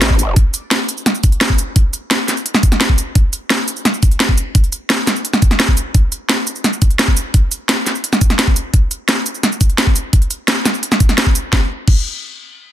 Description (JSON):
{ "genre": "dark technical drum and bass", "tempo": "172 BPM", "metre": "4/4", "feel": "straight", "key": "none", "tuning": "none", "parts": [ { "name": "drum and bass drum kit", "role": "drums", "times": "0.0-11.9 s", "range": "crash cymbal, hi-hat, shaker, snare drum", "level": "-15 LUFS", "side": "equal", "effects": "none" }, { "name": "electronic kick drum", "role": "drums", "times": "0.1-11.9 s", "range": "none", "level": "-12 LUFS", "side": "equal", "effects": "none" } ], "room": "little or no reverb", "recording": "dense, heavily limited modern master", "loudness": "-12 LUFS", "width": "side -12 dB against mid", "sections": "0.0-11.5 A section; 11.5-12.7 B section", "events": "none", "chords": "none" }